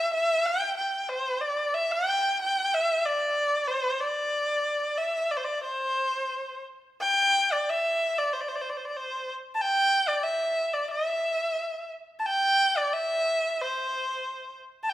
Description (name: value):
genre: chinese traditional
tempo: 92 BPM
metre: 2/4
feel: rubato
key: C gong mode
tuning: A4 = 441 Hz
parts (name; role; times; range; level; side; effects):
- clear erhu; solo; 0.0-14.9 s; C5 to A5; -24 LUFS; equal; none
room: moderate concert hall reverb, RT60 1.9 s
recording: none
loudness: -24 LUFS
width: side -14 dB against mid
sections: 0.0-7.0 A section; 7.0-14.9 B section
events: none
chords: none